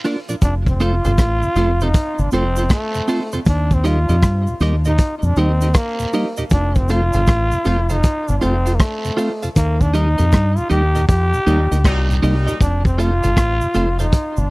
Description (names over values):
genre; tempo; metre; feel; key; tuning
roots reggae; 79 BPM; 4/4; swing 65% on 16ths; F mixolydian; A4 = 435 Hz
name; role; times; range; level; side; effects
clean electric guitar; accompaniment; 0.0-14.1 s; C4 to F5; -25 LUFS; right 3 dB; tape echo
mellow tonewheel organ; accompaniment; 0.0-14.4 s; Eb2 to F4; -23 LUFS; equal; chorus vibrato, stopped rotary speaker
crunchy breakbeat drum kit; drums; 0.0-14.4 s; hi-hat, kick drum, rim click; -15 LUFS; equal; none
cabasa and guiro; percussion; 0.0-14.5 s; none; -36 LUFS; right 6 dB; none
growling trombone; melody; 0.4-14.5 s; A3 to G4; -22 LUFS; equal; tape echo
deep dub fingered electric bass; bass; 0.4-14.5 s; F1 to G2; -17 LUFS; equal; none
warm horn section; second line; 11.5-12.6 s; Bb2 to Eb4; -26 LUFS; left 1 dB; tape echo
room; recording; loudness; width
studio ambience; dry, close 1970s-style studio recording; -14 LUFS; side -23 dB against mid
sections
0.4-14.5 A section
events
band accent 9.6-12.6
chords
0.4 F; 3.5 Eb; 6.5 F; 9.6 Eb; 12.6 F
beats
| 0.42 1.18 1.94 2.70 | 3.46 4.22 4.99 5.75 | 6.51 7.27 8.03 8.79 | 9.56 10.32 11.08 11.84 | 12.60 13.36 14.12